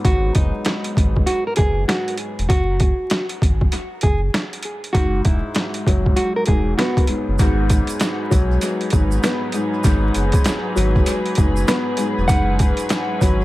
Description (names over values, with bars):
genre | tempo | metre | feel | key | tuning
hip hop, boom-bap hip-hop | 98 BPM | 4/4 | swing 62% on 16ths | G# minor | A4 = 440 Hz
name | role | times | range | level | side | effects
nylon-string guitar | melody | 0.0-7.1, 12.3-13.0 s | D#4 to F#5 | -25 LUFS | right 1 dB | high-pass filter, low-pass filter, dub echo
dark upright piano | accompaniment | 0.0-13.4 s | G#2 to B3 | -23 LUFS | left 2 dB | cassette tape, high-pass filter, low-pass filter, dub echo
sub bass with octave | bass | 0.0-13.4 s | E1 to B1 | -20 LUFS | equal | none
boom bap sampler-style drum kit | drums | 0.0-13.4 s | hi-hat, kick drum, snare drum | -19 LUFS | equal | overdrive, dub echo
warm studio string section | sustained chords | 7.4-13.4 s | F#3 to B4 | -27 LUFS | right 1 dB | high-pass filter, low-pass filter
tube shaker | percussion | 7.4-13.4 s | none | -36 LUFS | right 7 dB | dub echo
room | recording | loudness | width
light reverb, small room ambience | echo-heavy mix, vinyl crackle | -16 LUFS | side -17 dB against mid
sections
0.0-7.4 A section; 7.4-13.4 B section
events
break 0.0-4.9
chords
0.0 F#9sus4; 7.4 G#m7; 12.3 F#9sus4